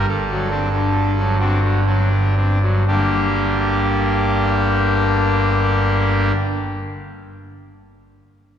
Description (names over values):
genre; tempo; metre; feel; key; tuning
classical, chorale-style piece for pipe organ; 58-74 BPM; 3/4; rubato; G minor; A4 = 440 Hz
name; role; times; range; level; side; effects
pipe organ, trumpet; solo; 0.0-6.3 s; G1 to A4; -16 LUFS; equal; none
room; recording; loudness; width
wet church reverb, RT60 2.8 s; heard from further back in the room; -16 LUFS; side -9 dB against mid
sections
0.0-2.9 A section; 2.9-5.9 B section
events
slowing down 0.0-2.9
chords
0.1 D7/G; 2.9 Gm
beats
| 0.08 0.93 1.86 | 2.87 3.88 4.90